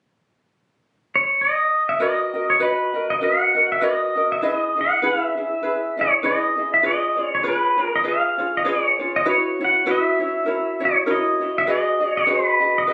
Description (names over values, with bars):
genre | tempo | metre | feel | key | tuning
hawaiian | 99 BPM | 4/4 | swing 57% on 8ths | B major | A4 = 439 Hz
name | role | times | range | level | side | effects
pedal steel guitar | melody | 1.2-12.9 s | B4 to F#5 | -21 LUFS | equal | none
ukulele | accompaniment | 2.0-12.9 s | E4 to D#5 | -25 LUFS | equal | none
room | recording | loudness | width
moderate small room reverb, RT60 0.5 s | recorded on a phone in the room, studio reverb, compression | -20 LUFS | mono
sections
0.0-2.0 A section; 2.0-12.9 B section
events
none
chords
0.0 N.C.; 2.0 Bmaj7; 4.4 Emaj7; 6.8 C#7; 9.3 F#7sus4; 10.5 F#7; 11.7 B6